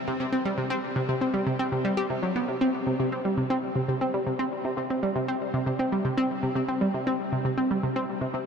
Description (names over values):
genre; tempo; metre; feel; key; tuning
ambient; 118 BPM; 4/4; straight; unclear; A4 = 438 Hz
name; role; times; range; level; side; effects
analog pluck; solo; 0.1-8.4 s; C3 to G4; -25 LUFS; equal; chorus, ping-pong delay
room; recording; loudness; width
wet huge ambient reverb, RT60 7.6 s; dark, warm production; -25 LUFS; side -6 dB against mid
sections
0.0-2.5 A section; 2.5-8.5 B section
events
none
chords
none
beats
| 0.46 0.96 1.47 1.98 | 2.49 3.00 3.51 4.01 | 4.52 5.03 5.54 6.05 | 6.56 7.07 7.57 8.08